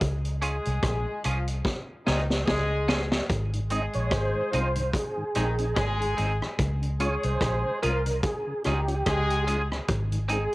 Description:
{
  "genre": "roots reggae",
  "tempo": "73 BPM",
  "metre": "4/4",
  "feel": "swing 57% on 16ths",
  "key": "unclear",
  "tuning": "A4 = 441 Hz",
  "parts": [
    { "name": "vintage muted fingered electric bass", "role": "bass", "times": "0.0-10.5 s", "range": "Ab1 to Db2", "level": "-28 LUFS", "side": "equal", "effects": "none" },
    { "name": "vintage drum kit", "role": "drums", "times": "0.0-10.5 s", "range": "hi-hat, kick drum, rim click, snare drum", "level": "-29 LUFS", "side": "equal", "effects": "cassette tape" },
    { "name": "clear horn section", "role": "second line", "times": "0.4-10.5 s", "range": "Eb3 to Ab4", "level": "-32 LUFS", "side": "left 1 dB", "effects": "cassette tape, tape echo" },
    { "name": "clean electric guitar", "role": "accompaniment", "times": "0.4-10.4 s", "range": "C4 to Ab4", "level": "-34 LUFS", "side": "right 2 dB", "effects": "tremolo, cassette tape, tape echo" },
    { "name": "mellow tonewheel organ", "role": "accompaniment", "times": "3.5-10.4 s", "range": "Ab2 to F4", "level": "-35 LUFS", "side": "left 1 dB", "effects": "chorus vibrato, slow rotary speaker, cassette tape" },
    { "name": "tonewheel organ", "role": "melody", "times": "3.7-10.5 s", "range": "G4 to Eb5", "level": "-31 LUFS", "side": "right 1 dB", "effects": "overdrive, chorus vibrato, slow rotary speaker, cassette tape, tape echo" }
  ],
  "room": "light reverb, small room reverb",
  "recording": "home recording on cassette",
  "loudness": "-24 LUFS",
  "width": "side -20 dB against mid",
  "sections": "0.0-10.5 A section",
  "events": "drum fill 1.7-3.3",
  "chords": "0.0 Db; 3.3 Ab; 6.6 Db; 9.9 Ab",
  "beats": "| 0.01 0.83 1.66 2.48 | 3.30 4.12 4.95 5.77 | 6.59 7.42 8.24 9.06 | 9.89"
}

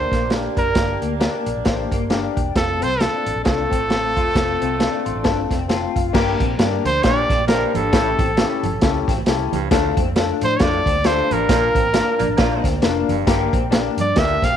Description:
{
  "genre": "uptempo 1960s-style soul",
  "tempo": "134 BPM",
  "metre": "4/4",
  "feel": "swing 58% on 8ths",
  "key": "G dorian",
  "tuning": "A4 = 439 Hz",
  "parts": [
    { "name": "clear trumpet", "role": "melody", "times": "0.0-14.6 s", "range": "A4 to F5", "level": "-21 LUFS", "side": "right 2 dB", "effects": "slapback echo" },
    { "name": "mellow saxophone section", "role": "second line", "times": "0.0-5.9, 11.5-12.7 s", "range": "A3 to G4", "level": "-30 LUFS", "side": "right 13 dB", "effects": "none" },
    { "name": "warm grand piano", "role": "accompaniment", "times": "0.0-14.4 s", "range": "A3 to C6", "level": "-24 LUFS", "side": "left 9 dB", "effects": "none" },
    { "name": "vintage muted fingered electric bass", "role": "bass", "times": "0.0-14.6 s", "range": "E1 to A2", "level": "-26 LUFS", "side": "right 1 dB", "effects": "none" },
    { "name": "electric guitar through a small old amp", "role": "riff", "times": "0.1-14.5 s", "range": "Bb3 to G4", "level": "-27 LUFS", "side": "left 11 dB", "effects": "analog chorus" },
    { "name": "crunchy breakbeat drum kit", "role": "drums", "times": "0.1-14.5 s", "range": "crash cymbal, hi-hat, kick drum, snare drum", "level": "-20 LUFS", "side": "right 1 dB", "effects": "none" },
    { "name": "breathy baritone saxophone", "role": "riff", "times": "6.1-14.4 s", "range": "D2 to Bb2", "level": "-30 LUFS", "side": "right 13 dB", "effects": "none" },
    { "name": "congas", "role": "percussion", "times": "6.2-14.6 s", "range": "none", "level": "-32 LUFS", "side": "right 14 dB", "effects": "none" }
  ],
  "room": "light reverb, studio ambience",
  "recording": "1960s-style stereo with parts hard left and right",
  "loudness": "-16 LUFS",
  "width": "side -9 dB against mid",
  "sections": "0.0-6.1 A section; 6.1-14.6 B section",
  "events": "grand piano fill 1.9-2.6, 4.8-6.1; band accent 11.5-13.3",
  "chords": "0.0 Gm; 7.9 A7; 9.7 Dm; 11.5 Bb; 13.3 Gm",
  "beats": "0.31 | 0.76 1.21 1.66 2.11 | 2.56 3.00 3.45 3.90 | 4.35 4.80 5.25 5.70 | 6.14 6.59 7.04 7.48 | 7.93 8.38 8.82 9.27 | 9.71 10.16 10.60 11.05 | 11.49 11.94 12.38 12.83 | 13.27 13.72 14.16"
}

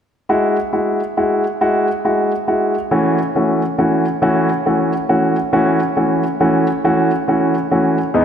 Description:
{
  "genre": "pop",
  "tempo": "46 BPM (dotted quarters)",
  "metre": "6/8",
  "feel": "straight",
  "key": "unclear",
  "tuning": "A4 = 440 Hz",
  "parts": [
    { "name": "clear concert grand piano", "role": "accompaniment", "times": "0.3-8.2 s", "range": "E2 to F#4", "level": "-14 LUFS", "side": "equal", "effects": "none" }
  ],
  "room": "wet concert hall reverb, RT60 2.1 s",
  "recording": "none",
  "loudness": "-14 LUFS",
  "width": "side -8 dB against mid",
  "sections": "0.3-8.2 A section",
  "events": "none",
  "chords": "0.3 Eadd9; 2.9 A6/E",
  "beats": "| 0.30 1.61 | 2.92 4.22 | 5.53 6.84 | 8.15"
}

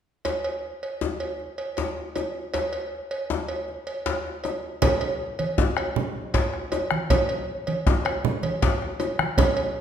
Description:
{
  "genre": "west african traditional, West African drum ensemble",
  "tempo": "105 BPM (dotted quarters)",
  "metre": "12/8",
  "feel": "straight",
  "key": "none",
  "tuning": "none",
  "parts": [
    { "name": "cowbell", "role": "percussion", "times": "0.2-9.7 s", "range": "none", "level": "-28 LUFS", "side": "right 2 dB", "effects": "none" },
    { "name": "djembe", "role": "percussion", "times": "0.3-9.6 s", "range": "none", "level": "-30 LUFS", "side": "left 6 dB", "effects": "none" },
    { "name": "bombo", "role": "percussion", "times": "4.8-9.6 s", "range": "none", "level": "-25 LUFS", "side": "equal", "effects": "none" },
    { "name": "congas", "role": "percussion", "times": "4.8-9.6 s", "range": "none", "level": "-28 LUFS", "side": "right 5 dB", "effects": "none" }
  ],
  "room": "wet recital hall reverb, RT60 1.5 s",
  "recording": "minimal, uncompressed stereo recording",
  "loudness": "-24 LUFS",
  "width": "side -9 dB against mid",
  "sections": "0.2-4.8 A section; 4.8-9.8 B section",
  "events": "none",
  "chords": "none",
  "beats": "| 0.25 0.82 1.39 1.96 | 2.53 3.10 3.67 4.25 | 4.82 5.39 5.96 6.53 | 7.10 7.67 8.24 8.81 | 9.38"
}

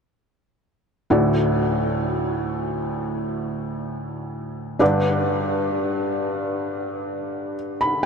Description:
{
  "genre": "pop",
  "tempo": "65 BPM",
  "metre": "4/4",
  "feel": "straight",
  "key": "D major",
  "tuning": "A4 = 440 Hz",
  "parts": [
    { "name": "felt-muted upright piano", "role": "accompaniment", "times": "1.1-8.1 s", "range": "D2 to B5", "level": "-21 LUFS", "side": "equal", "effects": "none" }
  ],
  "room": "wet huge ambient reverb, RT60 7.2 s",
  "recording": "dreamy mix soaked in reverb",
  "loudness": "-21 LUFS",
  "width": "side -5 dB against mid",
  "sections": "1.1-8.1 A section",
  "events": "none",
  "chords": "1.1 Dadd9; 4.8 G",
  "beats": "| 1.11 2.04 2.96 3.88 | 4.81 5.73 6.65 7.58"
}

